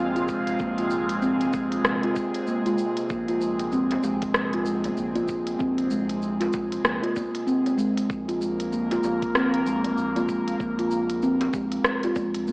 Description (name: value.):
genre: organic downtempo.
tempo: 96 BPM.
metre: 4/4.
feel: swing 60% on 16ths.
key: unclear.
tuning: A4 = 439 Hz.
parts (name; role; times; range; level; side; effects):
airy breathy pad; sustained chords; 0.0-12.5 s; C3 to F4; -30 LUFS; equal; chorus, phaser, sidechain pumping.
round analog bass; bass; 0.0-12.5 s; F1 to Bb1; -37 LUFS; equal; sidechain pumping.
steel tongue drum; arpeggios; 0.2-12.5 s; Ab3 to F4; -24 LUFS; equal; tape echo.
organic electronic drum kit; drums; 0.2-12.5 s; hi-hat, rim click, shaker; -28 LUFS; equal; overdrive.
electronic kick drum; drums; 0.3-12.3 s; none; -36 LUFS; equal; none.
djembe; percussion; 3.9-12.3 s; none; -35 LUFS; equal; none.
room: light reverb.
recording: dry, gritty hardware recording, AM radio sound.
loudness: -22 LUFS.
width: side -28 dB against mid.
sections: 0.0-12.5 A section.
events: none.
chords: 0.0 Bbsus2.